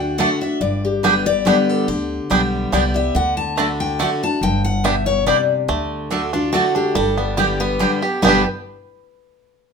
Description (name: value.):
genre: bluegrass.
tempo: 142 BPM.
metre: 3/4.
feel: straight.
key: G major.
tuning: A4 = 441 Hz.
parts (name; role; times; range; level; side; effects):
picked steel-string acoustic guitar; melody; 0.0-8.4 s; D4 to B5; -21 LUFS; left 5 dB; none.
picked steel-string acoustic guitar; accompaniment; 0.0-8.4 s; G2 to G4; -20 LUFS; left 1 dB; none.
upright bass; bass; 0.0-8.4 s; G1 to D2; -26 LUFS; right 1 dB; none.
bluegrass banjo; melody; 0.2-8.5 s; G3 to G4; -22 LUFS; right 4 dB; none.
mandolin; stabs; 0.2-8.4 s; A3 to A5; -22 LUFS; right 6 dB; none.
room: moderate studio reverb, RT60 0.8 s.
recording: minimal, uncompressed stereo recording.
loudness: -16 LUFS.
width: side -5 dB against mid.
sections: 0.0-5.7 A section; 5.7-8.2 B section; 8.2-9.5 C section.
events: none.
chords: 0.0 D; 0.6 G; 3.1 D; 4.4 G; 5.7 D; 7.0 G.